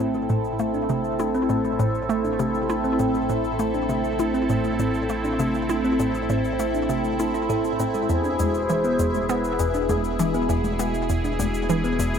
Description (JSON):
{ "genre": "ambient, sequencer-driven space music", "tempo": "100 BPM", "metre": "4/4", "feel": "straight", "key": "A harmonic minor", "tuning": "A4 = 440 Hz", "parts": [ { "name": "phased analog pad", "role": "sustained chords", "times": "0.0-12.2 s", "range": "B2 to A4", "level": "-24 LUFS", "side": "right 1 dB", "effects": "phaser, chorus" }, { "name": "thumb-piano-like synth pluck", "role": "arpeggios", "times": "0.0-12.2 s", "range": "A2 to A4", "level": "-28 LUFS", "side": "left 2 dB", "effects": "chorus, auto-pan, tape echo" }, { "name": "hollow square pluck", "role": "riff", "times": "0.0-12.2 s", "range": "E2 to E4", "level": "-27 LUFS", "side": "right 1 dB", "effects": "chorus, tape echo" }, { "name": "round analog bass", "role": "bass", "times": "0.0-12.2 s", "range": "E1 to A1", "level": "-35 LUFS", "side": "equal", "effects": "none" }, { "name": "pulsing gated texture", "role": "texture", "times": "0.0-12.2 s", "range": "E5", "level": "-40 LUFS", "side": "right 6 dB", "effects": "chorus, built-in reverb" }, { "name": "shaker and congas", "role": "percussion", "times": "0.1-12.2 s", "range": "none", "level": "-38 LUFS", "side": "left 4 dB", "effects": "tape echo" }, { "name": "expressive synth lead", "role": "melody", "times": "8.1-10.3 s", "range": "G#4 to C5", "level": "-28 LUFS", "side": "left 1 dB", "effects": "chorus, tape echo" } ], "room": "wet plate reverb, RT60 2.4 s", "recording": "echo-heavy mix", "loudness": "-21 LUFS", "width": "side -7 dB against mid", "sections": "0.0-12.2 A section", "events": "fade-in on analog synth bass 0.0-12.2; fade-in on synth texture 0.0-12.2; fade-in on drum 0.0-12.2", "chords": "0.0 Am; 8.1 E" }